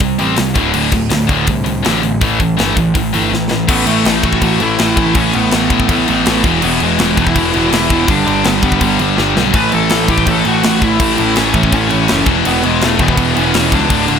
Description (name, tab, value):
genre	punk rock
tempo	164 BPM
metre	4/4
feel	straight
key	unclear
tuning	A4 = 441 Hz
part	sludgy distorted guitar	riff	0.0-14.2 s	D2 to C4	-17 LUFS	right 11 dB	overdrive
part	tight distorted guitar	riff	0.0-14.2 s	D2 to C4	-16 LUFS	left 14 dB	distortion
part	fuzz picked electric bass	bass	0.0-14.2 s	D1 to D2	-20 LUFS	left 1 dB	overdrive
part	tight metal drum kit	drums	0.0-14.2 s	crash cymbal, hi-hat, kick drum, snare drum	-17 LUFS	equal	none
part	smooth overdriven lead guitar	melody	3.7-14.2 s	G#3 to B4	-18 LUFS	left 3 dB	none
part	thick fuzz guitar	riff	9.5-14.2 s	D2 to A3	-21 LUFS	left 1 dB	none
room	light reverb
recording	none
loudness	-11 LUFS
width	side -7 dB against mid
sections	0.0-3.7 A section; 3.7-14.2 B section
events	drum fill 3.3-3.7, 9.2-9.5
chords	0.0 C5; 0.6 D5; 2.2 A5; 6.4 E; 8.1 G; 9.5 A; 12.3 E5